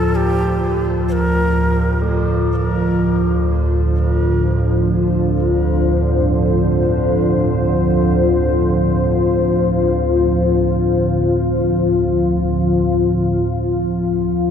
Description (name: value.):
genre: dark ambient drone.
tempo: free time.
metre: none.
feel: none.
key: unclear.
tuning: A4 = 440 Hz.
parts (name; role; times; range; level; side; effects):
breathy bright shakuhachi; melody; 0.0-2.0 s; G4 to C5; -25 LUFS; right 2 dB; ping-pong delay.
deep dark ambient pad; sustained chords; 0.0-14.5 s; D3 to F5; -16 LUFS; left 2 dB; chorus, built-in reverb.
gamelan-type bossed gongs; arpeggios; 0.0-11.8 s; none; barely audible; none; none.
deep rumbling drone; drone; 0.0-14.5 s; D2 to A2; -19 LUFS; right 1 dB; built-in reverb, phaser.
bronze singing bowl; texture; 0.0-14.5 s; F3 to A5; -33 LUFS; right 3 dB; none.
room: wet cathedral reverb, RT60 5.4 s.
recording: in a vast, echoing space.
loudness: -14 LUFS.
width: side -8 dB against mid.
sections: 0.0-14.5 A section.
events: fade-out on singing bowl 0.0-14.5.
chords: 0.0 Dm; 2.0 F/D.